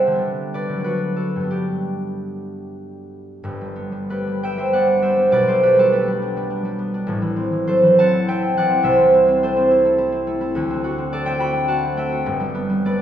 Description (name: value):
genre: classical, solo harp piece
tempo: 86-109 BPM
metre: 3/4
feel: rubato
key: G major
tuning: A4 = 440 Hz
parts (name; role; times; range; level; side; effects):
- concert harp; solo; 0.0-13.0 s; G1 to B5; -17 LUFS; equal; none
room: wet recital hall reverb, RT60 1.5 s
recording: heard from further back in the room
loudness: -16 LUFS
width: side -10 dB against mid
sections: 0.0-3.5 A section; 3.5-13.0 B section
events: none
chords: 0.2 G/D; 0.9 D; 1.5 G; 5.3 G/B; 7.1 Am; 8.9 Am/C; 10.6 D7; 12.3 G